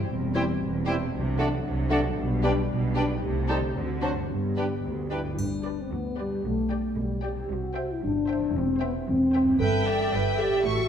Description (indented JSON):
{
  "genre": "cinematic, playful, whimsical film cue",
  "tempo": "114 BPM",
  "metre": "2/4",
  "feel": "straight",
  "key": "G major",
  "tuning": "A4 = 441 Hz",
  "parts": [
    { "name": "dark French horn section", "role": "sustained chords", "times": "0.0-10.9 s", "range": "F#3 to A4", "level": "-28 LUFS", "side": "left 1 dB", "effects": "none" },
    { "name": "concert harp", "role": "arpeggios", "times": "0.0-10.9 s", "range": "E2 to B4", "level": "-36 LUFS", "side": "left 7 dB", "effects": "none" },
    { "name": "rich studio double bass section", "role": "bass", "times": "0.1-10.9 s", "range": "E1 to D2", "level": "-32 LUFS", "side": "right 3 dB", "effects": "none" },
    { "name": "warm studio cello section", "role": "bass", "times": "0.1-10.9 s", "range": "D2 to D3", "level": "-33 LUFS", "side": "right 3 dB", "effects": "none" },
    { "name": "rich studio violin section", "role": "melody", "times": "0.3-10.9 s", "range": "A4 to C#6", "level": "-37 LUFS", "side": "left 2 dB", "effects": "none" },
    { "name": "rich studio violin section", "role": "second line", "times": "0.3-10.9 s", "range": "F#4 to G5", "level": "-37 LUFS", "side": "left 4 dB", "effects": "none" },
    { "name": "warm clarinet", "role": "second line", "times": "0.3-5.2 s", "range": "D4 to E4", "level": "-35 LUFS", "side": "left 1 dB", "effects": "none" },
    { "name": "dark bassoon", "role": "accompaniment", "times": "0.3-5.2 s", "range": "F#3 to A3", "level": "-35 LUFS", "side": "equal", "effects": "none" },
    { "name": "bright silver concert flute", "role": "second line", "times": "0.4-5.2 s", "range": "F#5 to A5", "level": "-39 LUFS", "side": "left 3 dB", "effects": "none" },
    { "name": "mellow cor anglais", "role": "second line", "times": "0.4-5.2 s", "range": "B4 to D5", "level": "-40 LUFS", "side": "right 3 dB", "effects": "none" },
    { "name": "warm studio viola section", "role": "accompaniment", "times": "0.4-10.9 s", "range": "D4 to D5", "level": "-37 LUFS", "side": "right 2 dB", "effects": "none" },
    { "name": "triangle", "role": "percussion", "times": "5.4-6.4 s", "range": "none", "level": "-48 LUFS", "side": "left 1 dB", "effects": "none" }
  ],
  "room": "moderate scoring stage reverb, RT60 1.5 s",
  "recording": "dark, warm production",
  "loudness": "-24 LUFS",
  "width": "side -8 dB against mid",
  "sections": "0.0-5.4 A section; 5.4-10.9 A section",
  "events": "none",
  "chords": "0.1 C/E; 1.1 D7/C; 2.2 G/B; 3.2 Am7b5/C; 3.8 D7; 4.3 G; 6.4 G/B; 7.5 C; 8.6 C/E; 9.6 Em7/G",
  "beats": "| 0.09 0.61 | 1.13 1.65 | 2.17 2.70 | 3.22 3.75 | 4.29 4.84 | 5.39 5.92 | 6.45 6.98 | 7.50 8.03 | 8.55 9.07 | 9.61 10.13 | 10.65"
}